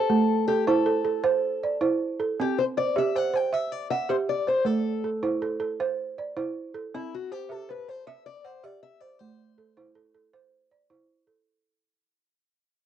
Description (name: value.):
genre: west african traditional, West African string and xylophone music.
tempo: 106 BPM (dotted quarters).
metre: 12/8.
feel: straight.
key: unclear.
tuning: A4 = 439 Hz.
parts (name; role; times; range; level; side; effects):
picked acoustic archtop guitar; melody; 0.0-11.1 s; E4 to G5; -29 LUFS; left 8 dB; none.
balafon; arpeggios; 0.0-11.7 s; A3 to F#5; -25 LUFS; right 4 dB; cassette tape.
room: light reverb, small room ambience.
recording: home recording on cassette.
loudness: -24 LUFS.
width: side -10 dB against mid.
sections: 0.0-11.5 A section.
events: fade-out 0.0-11.5.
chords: 0.1 Am; 2.4 C; 4.7 Am; 6.9 C; 9.2 Am.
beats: | 0.11 0.68 1.25 1.82 | 2.39 2.96 3.52 4.09 | 4.66 5.23 5.80 6.37 | 6.93 7.50 8.07 8.64 | 9.20 9.77 10.34 10.90.